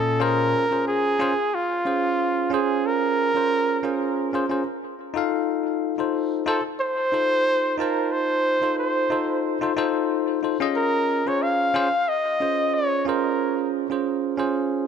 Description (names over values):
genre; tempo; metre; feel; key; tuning
chillout; 91 BPM; 4/4; swing 54% on 16ths; Bb minor; A4 = 440 Hz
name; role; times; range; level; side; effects
warm flugelhorn; melody; 0.0-13.7 s; F4 to F5; -23 LUFS; equal; tape echo
bell-like tine electric piano; accompaniment; 0.0-14.9 s; Bb2 to A5; -24 LUFS; moving between left 9 dB and right 13 dB; auto-pan, tape echo
room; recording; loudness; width
moderate scoring stage reverb, RT60 1.9 s; none; -20 LUFS; side -7 dB against mid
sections
0.2-14.9 A section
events
none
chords
0.2 Bbm7; 5.5 F7; 10.8 F5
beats
| 0.21 0.87 1.53 2.19 | 2.84 3.50 4.16 4.82 | 5.48 6.14 6.80 7.46 | 8.12 8.78 9.44 10.10 | 10.76 11.42 12.07 12.73 | 13.39 14.05 14.71